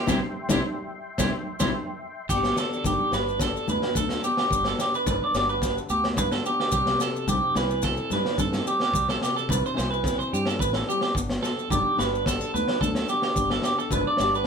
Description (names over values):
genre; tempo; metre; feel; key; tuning
highlife guitar band; 108 BPM; 4/4; straight; G major; A4 = 440 Hz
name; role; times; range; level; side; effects
nylon-string guitar; accompaniment; 0.0-14.5 s; G2 to G4; -32 LUFS; left 4 dB; none
percussive tonewheel organ; sustained chords; 0.0-2.3 s; E5 to C6; -36 LUFS; left 2 dB; slow rotary speaker, chorus vibrato
electric guitar at the edge of break-up; arpeggios; 0.0-14.5 s; E4 to D5; -25 LUFS; right 2 dB; none
fingered electric bass; bass; 0.1-14.5 s; G1 to G2; -31 LUFS; equal; none
crunchy breakbeat drum kit; drums; 0.1-14.5 s; crash cymbal, kick drum, snare drum; -29 LUFS; equal; none
congas; percussion; 0.1-14.3 s; none; -33 LUFS; left 2 dB; none
maracas; percussion; 0.1-14.4 s; none; -36 LUFS; left 6 dB; none
room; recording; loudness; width
moderate studio reverb, RT60 0.5 s; band playing live in one room; -22 LUFS; side -6 dB against mid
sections
0.0-2.3 A section; 2.3-14.5 B section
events
band accent 0.1-2.3; drum fill 1.2-2.3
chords
0.0 C; 2.3 G; 6.7 C; 11.2 G